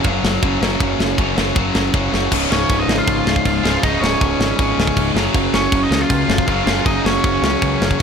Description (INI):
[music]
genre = punk rock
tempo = 159 BPM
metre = 4/4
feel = straight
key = Db major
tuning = A4 = 441 Hz
[part]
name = overdriven electric guitar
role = riff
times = 0.0-8.0 s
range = Db2 to Gb3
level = -22 LUFS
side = right 16 dB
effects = none
[part]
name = tight distorted guitar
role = riff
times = 0.0-8.0 s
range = Db2 to Gb3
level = -21 LUFS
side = left 15 dB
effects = distortion
[part]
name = growling picked electric bass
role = bass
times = 0.0-8.0 s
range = Db1 to Db2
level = -23 LUFS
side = equal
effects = overdrive
[part]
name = tight metal drum kit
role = drums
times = 0.0-8.0 s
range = crash cymbal, kick drum, ride cymbal, snare drum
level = -20 LUFS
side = equal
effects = none
[part]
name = biting overdriven guitar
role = melody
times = 2.5-8.0 s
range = Db4 to F5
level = -21 LUFS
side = equal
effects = none
[sound]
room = little or no reverb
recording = none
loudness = -14 LUFS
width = side -6 dB against mid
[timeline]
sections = 0.0-2.3 A section; 2.3-8.0 B section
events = drum fill 2.1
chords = 0.0 Gb5; 2.3 Db; 5.2 Gb5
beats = 0.05 0.43 | 0.81 1.19 1.56 1.94 | 2.32 2.70 3.07 3.45 | 3.83 4.21 4.59 4.96 | 5.34 5.72 6.10 6.48 | 6.86 7.24 7.62 8.00